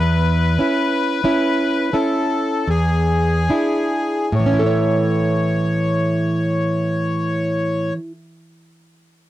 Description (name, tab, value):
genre	romantic duo for bandoneon and classical guitar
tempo	35-49 BPM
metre	3/4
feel	rubato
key	A major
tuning	A4 = 439 Hz
part	bandoneon	melody	0.0-7.9 s	G#4 to C#5	-22 LUFS	left 3 dB	none
part	nylon-string guitar	accompaniment	0.0-8.2 s	E2 to C#5	-18 LUFS	right 1 dB	none
room	light reverb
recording	dry, close 1970s-style studio recording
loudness	-16 LUFS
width	side -14 dB against mid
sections	0.0-4.3 A section; 4.3-9.2 B section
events	slowing down 0.0-4.3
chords	0.0 Aadd9/E; 2.7 E7; 4.3 A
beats	1.25 2.70 | 4.34 5.96 7.57